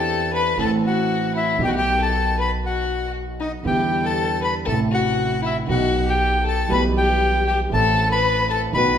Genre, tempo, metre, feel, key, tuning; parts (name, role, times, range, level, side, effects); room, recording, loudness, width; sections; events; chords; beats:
tango; 118 BPM; 4/4; rubato; A4 = 440 Hz
bandoneon; melody; 0.0-9.0 s; D#5 to B5; -22 LUFS; left 2 dB
warm violin; second line; 0.0-9.0 s; D#4 to B4; -24 LUFS; left 6 dB
dark concert grand piano; accompaniment; 0.0-9.0 s; A1 to A4; -24 LUFS; right 4 dB
upright bass; bass; 0.0-9.0 s; A1 to E2; -26 LUFS; right 1 dB
wet recital hall reverb, RT60 1.4 s; recorded in a church or concert hall; -18 LUFS; side -8 dB against mid
0.0-9.0 A section
0.0 Cadd9/E; 0.6 Am; 1.6 B; 3.6 Em7; 4.7 Am; 5.7 B; 6.7 Em/B; 7.7 Am
0.07 0.58 1.09 | 1.60 2.11 2.62 3.14 | 3.65 4.16 4.67 5.18 | 5.69 6.20 6.71 7.22 | 7.73 8.23 8.74